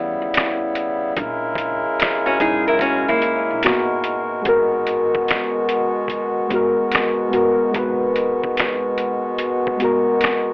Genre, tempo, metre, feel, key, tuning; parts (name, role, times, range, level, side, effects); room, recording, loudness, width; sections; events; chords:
lo-fi hip hop; 73 BPM; 4/4; swing 66% on 16ths; G# minor; A4 = 439 Hz
muted felt-like synth keys; accompaniment; 0.0-10.5 s; G3 to B4; -19 LUFS; left 1 dB; chorus, cassette tape
pedal harmonium; sustained chords; 0.0-10.5 s; B2 to A#4; -23 LUFS; equal
upright bass; bass; 0.0-10.0 s; F#1 to E2; -37 LUFS; equal; tube saturation
trip hop sampler-style drum kit; drums; 0.3-10.5 s; finger snaps, hi-hat, kick drum, snare drum; -21 LUFS; equal; overdrive, vintage 12-bit sampler grit
nylon-string guitar; second line; 2.3-3.6 s; A#3 to A#4; -19 LUFS; equal; analog delay
light reverb; dry, gritty hardware recording, telephone sound; -17 LUFS; side -24 dB against mid
0.0-4.5 A section; 4.5-10.5 B section
synth keys solo 0.0-4.5
0.0 D#7b9b13 (rootless); 1.2 A#m7b5; 3.6 G#m9